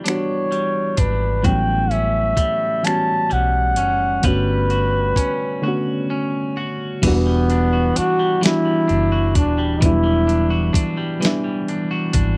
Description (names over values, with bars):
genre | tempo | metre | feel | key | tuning
slow six-eight R&B | 43 BPM (dotted quarters) | 6/8 | straight | E dorian | A4 = 440 Hz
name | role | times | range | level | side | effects
electric guitar at the edge of break-up | second line | 0.0-12.4 s | A2 to B4 | -29 LUFS | equal | none
reed electric piano | accompaniment | 0.0-12.4 s | D3 to F#4 | -25 LUFS | equal | none
breathy flugelhorn | melody | 0.1-10.9 s | B3 to A5 | -22 LUFS | equal | none
dusty soul sampler-style drum kit | drums | 0.1-12.4 s | crash cymbal, finger snaps, hi-hat, kick drum, snare drum | -22 LUFS | equal | none
vintage muted fingered electric bass | bass | 1.0-12.4 s | D#1 to B1 | -23 LUFS | equal | none
room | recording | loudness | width
little or no reverb | dry, close 1970s-style studio recording | -19 LUFS | mono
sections
0.0-7.0 A section; 7.0-12.4 B section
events
break 5.6-7.0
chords
0.0 Em9; 1.4 A13; 4.2 Gmaj9#11; 7.0 Em9